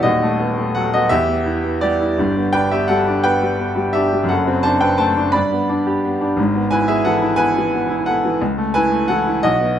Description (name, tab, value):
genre	classical, romantic character piece for solo piano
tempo	57 BPM (dotted quarters)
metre	6/8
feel	rubato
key	E major from 6.4 s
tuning	A4 = 438 Hz
part	clear grand piano	solo	0.0-9.8 s	D#1 to B5	-15 LUFS	equal	none
room	moderate recital hall reverb, RT60 1.4 s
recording	close, detailed microphones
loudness	-15 LUFS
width	side -10 dB against mid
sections	0.0-9.8 A section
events	none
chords	0.0 B7/D#; 1.1 Em; 2.2 G; 4.3 D7/F#; 5.3 G; 6.4 E/G#; 8.4 A/C#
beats	| 0.03 1.10 | 2.18 3.24 | 4.29 5.35 | 6.38 7.38 | 8.40 9.43